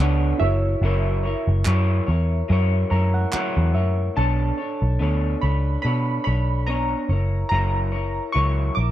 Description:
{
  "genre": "indie pop, bedroom pop",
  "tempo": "72 BPM",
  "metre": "4/4",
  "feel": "swing 55% on 16ths",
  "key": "B minor",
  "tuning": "A4 = 440 Hz",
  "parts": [
    { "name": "warm analog keys", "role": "melody", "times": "0.0-8.9 s", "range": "E5 to D6", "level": "-28 LUFS", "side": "right 1 dB", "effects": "wide subtle chorus, slapback echo" },
    { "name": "electric guitar through a small old amp", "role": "accompaniment", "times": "0.0-8.9 s", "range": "F#3 to C#5", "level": "-26 LUFS", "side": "left 1 dB", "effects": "wide subtle chorus, warbly pitch drift" },
    { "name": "reed electric piano", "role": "accompaniment", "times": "0.0-4.2 s", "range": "D4 to A#5", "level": "-31 LUFS", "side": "right 4 dB", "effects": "none" },
    { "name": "vintage muted picked electric bass", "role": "bass", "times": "0.0-8.9 s", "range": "F#1 to B2", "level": "-20 LUFS", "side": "equal", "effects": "none" },
    { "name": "group handclap", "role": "percussion", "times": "1.7-3.5 s", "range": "none", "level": "-29 LUFS", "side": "right 5 dB", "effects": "none" }
  ],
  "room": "light reverb",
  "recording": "dry, close 1970s-style studio recording",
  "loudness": "-19 LUFS",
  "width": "side -13 dB against mid",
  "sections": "0.0-4.2 A section; 4.2-8.9 B section",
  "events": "reed electric piano fill 2.5-4.2",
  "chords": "0.4 F#7; 4.2 Bm9; 7.1 F#7"
}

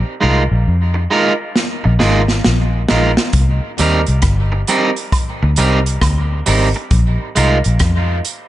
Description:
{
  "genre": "dub reggae",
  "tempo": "67 BPM",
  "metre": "4/4",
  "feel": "swing 64% on 16ths",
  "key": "unclear",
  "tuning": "A4 = 440 Hz",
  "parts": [
    { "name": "vintage muted fingered electric bass", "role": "bass", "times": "0.0-8.2 s", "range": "G1 to F2", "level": "-14 LUFS", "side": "equal", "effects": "none" },
    { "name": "electric guitar at the edge of break-up", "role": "accompaniment", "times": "0.2-7.6 s", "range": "G3 to Bb4", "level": "-17 LUFS", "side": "right 2 dB", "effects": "dub echo" },
    { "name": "vintage drum kit", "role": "drums", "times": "1.6-8.5 s", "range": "hi-hat, kick drum, rim click, snare drum", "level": "-18 LUFS", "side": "equal", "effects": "none" },
    { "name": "tambourine and woodblock", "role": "percussion", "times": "3.8-8.5 s", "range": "none", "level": "-27 LUFS", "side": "right 6 dB", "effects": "dub echo" }
  ],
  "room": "light reverb",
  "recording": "nothing above 10.6 kHz",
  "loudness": "-12 LUFS",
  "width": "side -14 dB against mid",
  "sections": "0.0-8.5 A section",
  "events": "drum fill 1.6-3.3",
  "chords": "0.0 Bb7sus4; 3.3 Cm7; 6.9 Bb7sus4"
}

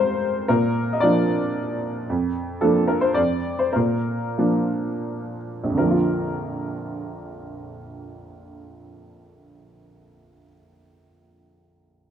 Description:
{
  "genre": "classical, lyrical solo piano",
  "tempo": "78-114 BPM",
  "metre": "3/4",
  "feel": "rubato",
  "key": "Bb major",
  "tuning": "A4 = 440 Hz",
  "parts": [
    { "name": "warm upright piano", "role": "solo", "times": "0.0-12.1 s", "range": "Bb1 to Eb5", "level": "-21 LUFS", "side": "equal", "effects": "none" }
  ],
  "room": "moderate recital hall reverb, RT60 1.6 s",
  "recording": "dark, warm production",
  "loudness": "-20 LUFS",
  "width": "side -9 dB against mid",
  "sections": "0.0-5.8 A section; 5.8-10.2 B section",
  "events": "slowing down 2.1-5.8",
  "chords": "0.5 Bb; 2.1 Bb/F; 3.2 N.C.; 3.8 Bb"
}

